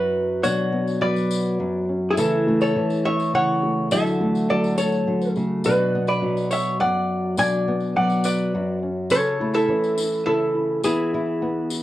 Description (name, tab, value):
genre	acoustic folk duo or small band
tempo	104 BPM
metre	3/4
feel	straight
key	A major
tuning	A4 = 440 Hz
part	vintage hollow-body jazz guitar	melody	0.0-11.8 s	G#4 to G#5	-23 LUFS	equal	none
part	metal-body resonator slide guitar	second line	0.0-11.8 s	E4 to D5	-28 LUFS	equal	none
part	nylon-string guitar	accompaniment	0.0-11.8 s	F#2 to F#4	-26 LUFS	left 1 dB	none
part	felt-muted upright piano	arpeggios	0.0-11.8 s	E3 to E4	-25 LUFS	equal	slapback echo
part	tambourine	percussion	0.4-11.8 s	none	-36 LUFS	left 4 dB	none
room	moderate small room ambience, RT60 0.5 s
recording	worn, warbling old tape, cassette tape, warbly pitch drift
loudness	-19 LUFS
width	side -14 dB against mid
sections	0.0-11.8 A section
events	none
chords	0.0 Bmadd9; 2.2 A/C#; 3.9 Dadd9; 5.6 Bm; 9.1 A/C#; 10.8 E